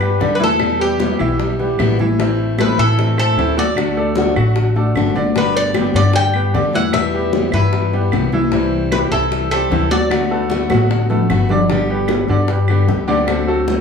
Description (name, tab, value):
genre	latin, Cuban son and guajira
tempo	151 BPM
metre	4/4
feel	straight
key	G major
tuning	A4 = 441 Hz
part	Cuban tres	melody	0.0-10.7 s	G4 to G5	-20 LUFS	equal	none
part	fingerpicked plugged-in steel-string acoustic guitar	accompaniment	0.0-13.8 s	B2 to G4	-21 LUFS	left 5 dB	none
part	bright grand piano	arpeggios	0.0-13.8 s	D3 to F#5	-20 LUFS	right 2 dB	none
part	upright bass	bass	0.0-13.8 s	G1 to A2	-19 LUFS	left 1 dB	none
part	bongos	percussion	0.0-13.8 s	none	-26 LUFS	left 4 dB	none
part	claves	percussion	0.0-13.5 s	none	-30 LUFS	right 5 dB	none
part	congas	percussion	0.0-13.8 s	none	-23 LUFS	left 3 dB	none
room	moderate studio reverb, RT60 0.8 s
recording	studio ambience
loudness	-14 LUFS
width	side -6 dB against mid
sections	0.0-11.7 A section; 11.7-13.8 B section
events	drum fill 10.7-11.7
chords	0.0 G; 0.6 Em; 2.2 Am; 3.8 D; 5.4 G; 6.9 Em; 8.5 C; 10.1 D6; 11.7 G; 13.3 D7